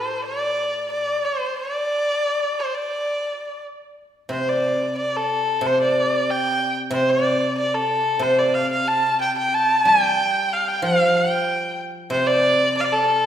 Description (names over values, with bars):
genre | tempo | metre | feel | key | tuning
chinese traditional, Chinese chamber ensemble | 91 BPM | 2/4 | rubato | D yu mode | A4 = 440 Hz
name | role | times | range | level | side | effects
clear erhu | melody | 0.0-13.3 s | A4 to A5 | -20 LUFS | equal | none
guzheng | accompaniment | 0.0-0.9, 4.3-13.3 s | A2 to G3 | -23 LUFS | equal | none
room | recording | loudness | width
wet recital hall reverb, RT60 1.5 s | recorded in a church or concert hall | -18 LUFS | side -10 dB against mid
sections
0.0-4.3 A section; 4.3-13.3 B section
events
none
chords
none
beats
| 0.23 0.91 | 1.58 2.25 | 2.92 3.62 | 4.31 4.98 | 5.64 6.28 | 6.92 7.56 | 8.21 8.86 | 9.53 10.19 | 10.83 11.47 | 12.11 12.76